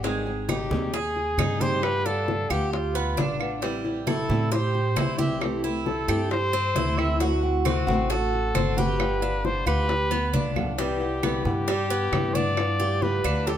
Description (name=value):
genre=latin, Cuban son and guajira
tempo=134 BPM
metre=4/4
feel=straight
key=C major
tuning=A4 = 439 Hz
part: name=flamenco guitar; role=accompaniment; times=0.0-13.5 s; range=C3 to Ab4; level=-30 LUFS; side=left 2 dB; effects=none
part: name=Cuban tres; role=arpeggios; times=0.0-13.6 s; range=G3 to Ab4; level=-29 LUFS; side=right 4 dB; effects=none
part: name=upright bass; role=bass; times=0.0-13.6 s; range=G1 to A2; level=-28 LUFS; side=right 1 dB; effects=none
part: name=bongos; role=percussion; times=0.0-13.6 s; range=none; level=-33 LUFS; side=left 7 dB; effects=none
part: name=congas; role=percussion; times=0.0-13.6 s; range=none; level=-31 LUFS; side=equal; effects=none
part: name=mellow trumpet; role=melody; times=0.5-13.6 s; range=F4 to E5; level=-28 LUFS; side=left 2 dB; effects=none
part: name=claves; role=percussion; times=0.5-13.5 s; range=none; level=-35 LUFS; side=right 11 dB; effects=none
room=light reverb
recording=none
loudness=-22 LUFS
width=side -10 dB against mid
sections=0.0-10.8 A section; 10.8-13.6 B section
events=drum fill 10.1-10.8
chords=0.0 Abmaj7; 1.8 G7; 3.6 Am7; 5.4 C6; 7.2 D7; 9.0 G7; 10.8 Cmaj7; 12.6 G7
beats=| 0.04 0.49 0.94 1.39 | 1.83 2.28 2.73 3.18 | 3.63 4.07 4.52 4.97 | 5.42 5.87 6.31 6.76 | 7.21 7.66 8.10 8.55 | 9.00 9.44 9.89 10.34 | 10.79 11.23 11.68 12.13 | 12.58 13.03 13.47